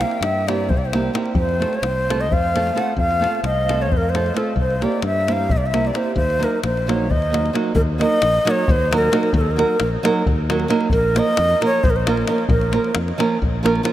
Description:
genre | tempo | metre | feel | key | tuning
balkan folk, Balkan wedding band | 264 BPM (eighths) | 7/8 | straight | Eb dorian sharp4 | A4 = 435 Hz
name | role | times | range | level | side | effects
breathy bright low ney | melody | 0.0-13.0 s | A4 to Gb5 | -21 LUFS | equal | none
nylon-string guitar | accompaniment | 0.0-13.9 s | F3 to Bb4 | -22 LUFS | right 3 dB | none
fingered electric bass | bass | 0.0-13.8 s | Bb1 to G2 | -22 LUFS | left 1 dB | none
davul | percussion | 0.0-13.9 s | none | -23 LUFS | left 2 dB | none
room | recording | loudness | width
moderate huge ambient reverb, RT60 8.1 s | in a vast, echoing space | -16 LUFS | side -13 dB against mid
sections
0.0-7.8 A section; 7.8-13.9 B section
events
none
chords
0.0 C7; 1.4 F; 4.6 C7; 6.2 Ebm; 10.9 Bbm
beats
0.21 0.44 0.67 0.90 1.13 | 1.36 1.59 1.82 2.04 2.27 2.50 2.73 | 2.96 3.19 3.42 3.65 3.88 4.10 4.33 | 4.56 4.79 5.02 5.25 5.47 5.70 5.93 | 6.16 6.39 6.61 6.84 7.07 7.30 7.52 | 7.75 7.98 8.20 8.43 8.65 8.88 9.11 | 9.33 9.56 9.78 10.01 10.23 10.46 10.69 | 10.91 11.13 11.36 11.59 11.81 12.03 12.26 | 12.48 12.71 12.93 13.16 13.38 13.61 13.83

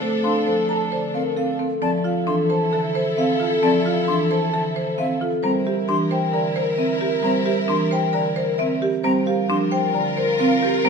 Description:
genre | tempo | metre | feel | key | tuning
classical, minimalist pattern music | 133 BPM | 4/4 | straight | F major | A4 = 440 Hz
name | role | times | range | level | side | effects
vibraphone with medium mallets | melody | 0.0-10.9 s | G4 to A5 | -24 LUFS | left 3 dB | none
mellow wooden-headed alto flute | second line | 0.0-10.9 s | A4 to Bb4 | -27 LUFS | right 4 dB | none
marimba with soft mallets | accompaniment | 0.0-10.9 s | D3 to C4 | -24 LUFS | right 1 dB | none
rich studio string section | sustained chords | 0.0-10.9 s | D4 to Bb4 | -28 LUFS | left 3 dB | none
buzzing marimba with hard mallets | arpeggios | 0.0-10.9 s | C4 to C5 | -26 LUFS | right 4 dB | none
mellow silver concert flute | arpeggios | 0.2-10.9 s | E5 to C6 | -29 LUFS | left 4 dB | none
room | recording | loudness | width
wet stone room reverb, RT60 1.2 s | minimal, uncompressed stereo recording | -18 LUFS | side -5 dB against mid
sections
0.0-1.8 A section; 1.8-10.9 B section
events
none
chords
0.0 Bbmaj7 (rootless); 1.8 Fmaj7; 5.4 C7; 9.0 Gm7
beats
| 0.02 0.47 0.92 1.37 | 1.82 2.27 2.72 3.17 | 3.63 4.08 4.53 4.98 | 5.43 5.88 6.33 6.78 | 7.24 7.69 8.14 8.59 | 9.04 9.49 9.94 10.39 | 10.84

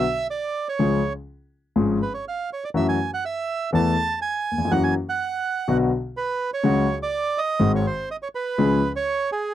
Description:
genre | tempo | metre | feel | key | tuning
tango | 123 BPM | 4/4 | rubato | unclear | A4 = 443 Hz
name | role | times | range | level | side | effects
bandoneon | melody | 0.0-9.5 s | G#4 to A5 | -25 LUFS | right 4 dB | none
warm concert grand piano | accompaniment | 0.8-8.8 s | G#1 to A4 | -21 LUFS | left 2 dB | none
room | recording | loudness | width
little or no reverb | dry, close 1970s-style studio recording | -21 LUFS | side -12 dB against mid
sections
0.0-9.5 A section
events
none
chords
0.0 N.C.; 0.8 C#; 2.7 F#m7; 3.7 Esus4; 4.7 F#7; 5.7 Bm; 6.7 C#sus4; 7.6 G#7; 8.6 C#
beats
0.30 | 0.79 1.27 1.76 2.25 | 2.75 3.24 3.73 4.22 | 4.71 5.19 5.68 6.17 | 6.65 7.14 7.62 8.11 | 8.60 9.09

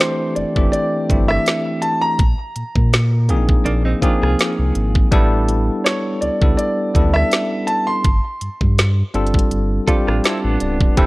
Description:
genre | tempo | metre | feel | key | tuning
contemporary R&B | 82 BPM | 4/4 | swing 54% on 16ths | unclear | A4 = 440 Hz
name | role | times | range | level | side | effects
warm grand piano | melody | 0.0-9.3 s | C5 to C6 | -21 LUFS | equal | digital delay
bell-like tine electric piano | accompaniment | 0.0-11.1 s | E3 to A5 | -20 LUFS | left 1 dB | medium stereo tremolo
trap drum kit | drums | 0.0-11.1 s | hi-hat, kick drum, rim click, snare drum | -17 LUFS | equal | none
sub bass with octave | bass | 0.4-11.1 s | C#1 to Bb2 | -18 LUFS | equal | none
direct-recorded clean electric guitar | arpeggios | 3.7-5.1, 9.9-10.9 s | Bb3 to A4 | -25 LUFS | right 3 dB | tremolo
room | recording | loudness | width
digital ambience | worn, warbling old tape, cassette tape, warbly pitch drift | -15 LUFS | side -21 dB against mid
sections
0.0-11.1 A section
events
tine electric piano fill 9.9-11.0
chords
0.0 D9sus4; 2.2 Bb9sus4; 5.1 A9sus4; 8.0 G9sus4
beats
0.00 0.73 1.46 | 2.19 2.92 3.66 4.39 | 5.12 5.85 6.58 7.31 | 8.05 8.78 9.51 10.24 | 10.97

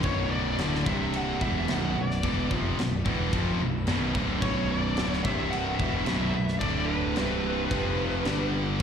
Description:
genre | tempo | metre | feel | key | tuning
heavy metal | 110 BPM | 4/4 | straight | B minor | A4 = 441 Hz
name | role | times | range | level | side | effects
smooth overdriven lead guitar | melody | 0.0-8.5 s | B4 to F#5 | -33 LUFS | equal | slapback echo, digital delay
pipe organ, plenum | sustained chords | 0.0-8.8 s | A2 to F5 | -41 LUFS | equal | none
fuzz guitar | riff | 0.0-8.8 s | B1 to G3 | -33 LUFS | right 1 dB | distortion, slapback echo
heavy high-gain guitar | riff | 0.0-8.8 s | B1 to G3 | -32 LUFS | left 10 dB | distortion, slapback echo
tight distorted guitar | riff | 0.0-8.8 s | B1 to G3 | -33 LUFS | right 10 dB | distortion, slapback echo
fuzz picked electric bass | bass | 0.0-8.8 s | B0 to G1 | -31 LUFS | equal | overdrive
tight metal drum kit | drums | 0.0-8.8 s | crash cymbal, kick drum, snare drum | -33 LUFS | equal | none
room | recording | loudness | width
light reverb | live gig heard through the venue's PA, recital hall reverb | -25 LUFS | side -7 dB against mid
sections
0.0-8.8 A section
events
none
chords
0.0 Bm; 0.9 C5; 1.4 Bm; 5.3 C5; 5.8 Bm; 6.6 D5; 7.2 C5; 7.7 F5; 8.3 G5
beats
| 0.05 0.60 1.15 1.69 | 2.24 2.79 3.34 3.88 | 4.43 4.98 5.53 6.07 | 6.62 7.17 7.71 8.26 | 8.81

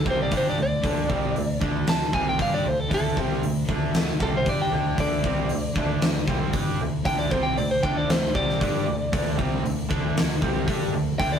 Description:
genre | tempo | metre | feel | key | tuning
hard rock | 116 BPM | 4/4 | straight | unclear | A4 = 439 Hz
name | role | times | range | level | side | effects
lightly driven lead guitar | melody | 0.0-11.4 s | A4 to A5 | -26 LUFS | equal | tape echo
growling fingered electric bass | bass | 0.0-11.4 s | C2 to G2 | -32 LUFS | equal | overdrive
overdriven semi-hollow guitar | riff | 0.1-11.4 s | C3 to G4 | -28 LUFS | right 3 dB | none
sludgy distorted guitar | riff | 0.1-11.4 s | C3 to G4 | -34 LUFS | left 4 dB | overdrive
huge arena drum kit | drums | 0.1-11.3 s | hi-hat, kick drum, snare drum | -25 LUFS | left 1 dB | none
room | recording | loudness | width
light reverb | rough rehearsal-room recording, warm saturation | -22 LUFS | side -8 dB against mid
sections
0.0-11.4 A section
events
lead electric guitar solo 0.0-11.4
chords
0.0 D5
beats
0.32 | 0.84 1.36 1.88 2.39 | 2.91 3.43 3.95 4.47 | 4.98 5.50 6.02 6.54 | 7.06 7.57 8.09 8.61 | 9.13 9.64 10.16 10.68 | 11.20

